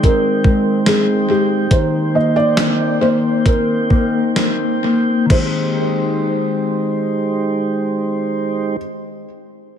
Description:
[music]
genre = dream pop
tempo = 63-73 BPM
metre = 4/4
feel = straight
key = Ab major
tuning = A4 = 440 Hz
[part]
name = felt-muted upright piano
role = melody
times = 0.0-8.8 s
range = G4 to Eb5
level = -20 LUFS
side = right 2 dB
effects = tape echo
[part]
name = mellow tonewheel organ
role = sustained chords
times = 0.0-8.8 s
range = Ab3 to G5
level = -20 LUFS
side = right 2 dB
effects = slow rotary speaker
[part]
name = mellow electric guitar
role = arpeggios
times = 0.0-8.9 s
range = Eb3 to G4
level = -19 LUFS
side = left 4 dB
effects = lush chorus, tape echo
[part]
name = gated 80s digital drum machine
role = drums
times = 0.0-5.5 s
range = crash cymbal, hi-hat, kick drum, snare drum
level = -17 LUFS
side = right 1 dB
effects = gated reverb, gated reverb snare, tape echo
[sound]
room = light reverb, digital ambience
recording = echo-heavy mix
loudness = -14 LUFS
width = side -8 dB against mid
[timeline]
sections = 0.0-5.3 A section; 5.3-9.1 B section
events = slowing down 0.0-5.3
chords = 0.0 Abmaj7; 1.7 Cm7; 5.3 Abmaj7

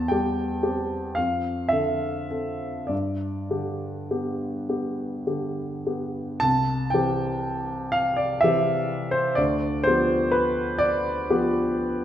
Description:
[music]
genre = classical, romantic nocturne for solo piano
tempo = 32-44 BPM (dotted quarters)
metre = 12/8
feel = rubato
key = C major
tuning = A4 = 440 Hz
[part]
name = warm grand piano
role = solo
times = 0.0-12.0 s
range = C2 to A5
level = -23 LUFS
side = equal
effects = none
[sound]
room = wet recital hall reverb, RT60 1.4 s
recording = none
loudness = -23 LUFS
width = side -11 dB against mid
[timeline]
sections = 0.0-6.4 A section; 6.4-12.0 B section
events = none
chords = 0.0 C/E; 1.2 Dm7/F; 2.9 G; 6.4 C; 9.4 G7/D

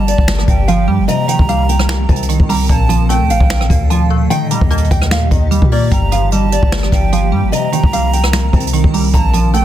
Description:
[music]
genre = hip hop, trap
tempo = 149 BPM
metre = 4/4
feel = half-time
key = unclear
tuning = A4 = 438 Hz
[part]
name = nylon-string guitar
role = melody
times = 0.0-9.6 s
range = D5 to Bb5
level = -21 LUFS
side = right 1 dB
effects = none
[part]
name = breathy hollow jazz flute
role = second line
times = 0.0-9.6 s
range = Eb5 to Bb5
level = -23 LUFS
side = right 5 dB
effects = digital delay
[part]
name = glassy wavetable pluck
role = accompaniment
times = 0.0-9.6 s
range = G2 to Bb3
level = -18 LUFS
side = right 1 dB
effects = chorus
[part]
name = granular cloud pad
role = sustained chords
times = 0.1-9.6 s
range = Bb2 to Bb4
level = -23 LUFS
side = left 1 dB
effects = built-in reverb
[part]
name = warm 808-style bass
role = bass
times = 0.0-9.6 s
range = G1 to Bb2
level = -15 LUFS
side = equal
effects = none
[part]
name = jazz brush drum kit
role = drums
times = 0.1-9.6 s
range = finger snaps, hi-hat, kick drum, rim click, snare drum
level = -15 LUFS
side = equal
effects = soft clipping on snare
[sound]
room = small room ambience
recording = dense, heavily limited modern master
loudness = -11 LUFS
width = side -12 dB against mid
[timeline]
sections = 0.0-9.6 A section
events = none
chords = 0.0 Gm7; 1.1 Cm7; 2.7 Bbmaj7; 4.3 Eb; 5.9 Gm7; 7.5 Cm7; 9.1 Bbmaj7

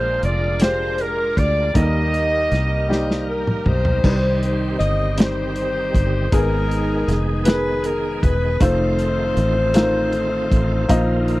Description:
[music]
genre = slow gospel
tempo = 52 BPM (dotted quarters)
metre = 6/8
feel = straight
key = unclear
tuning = A4 = 440 Hz
[part]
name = bright clarinet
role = melody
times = 0.0-3.2 s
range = Bb4 to Eb5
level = -23 LUFS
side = right 2 dB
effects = none
[part]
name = mellow saxophone section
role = melody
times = 0.0-11.4 s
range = Eb4 to Eb5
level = -23 LUFS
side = left 2 dB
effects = none
[part]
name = clear concert grand piano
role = accompaniment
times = 0.0-11.4 s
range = Ab2 to Eb5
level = -25 LUFS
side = left 1 dB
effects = none
[part]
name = bright tonewheel organ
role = sustained chords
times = 0.0-11.4 s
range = Eb3 to Bb4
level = -28 LUFS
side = right 3 dB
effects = slow rotary speaker, overdrive, chorus vibrato
[part]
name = fingered electric bass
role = bass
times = 0.0-11.4 s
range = Fb1 to Eb2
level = -22 LUFS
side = equal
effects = none
[part]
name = warm soul drum kit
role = drums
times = 0.2-11.4 s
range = crash cymbal, hi-hat, kick drum, snare drum, toms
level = -19 LUFS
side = equal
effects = none
[sound]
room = little or no reverb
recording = dry, close 1970s-style studio recording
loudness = -17 LUFS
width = side -18 dB against mid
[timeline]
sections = 0.0-4.0 A section; 4.0-11.4 B section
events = drum fill 2.9-4.0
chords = 0.0 Bb7; 1.7 Eb; 4.0 Cm; 6.3 Abm; 8.6 F7; 10.9 Bbsus4

